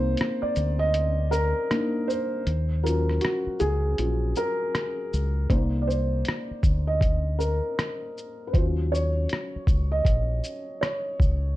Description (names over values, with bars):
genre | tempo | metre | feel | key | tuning
lo-fi hip hop | 79 BPM | 4/4 | swing 63% on 16ths | unclear | A4 = 442 Hz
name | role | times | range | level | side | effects
felt-muted upright piano | accompaniment | 0.0-11.6 s | Gb3 to Eb5 | -27 LUFS | equal | low-pass filter, plate reverb
deep dub fingered electric bass | bass | 0.0-11.5 s | Bb1 to Eb2 | -25 LUFS | equal | none
lo-fi sampler-style drum kit | drums | 0.2-11.4 s | hi-hat, kick drum, rim click, shaker | -25 LUFS | equal | vintage 12-bit sampler grit
room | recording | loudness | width
light reverb | dark, warm production | -23 LUFS | side -15 dB against mid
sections
0.0-11.6 A section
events
break 0.0-5.5; felt piano solo 0.0-11.6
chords
0.0 Cm7; 2.5 Ebm7; 5.5 Cm7; 8.5 Ebm7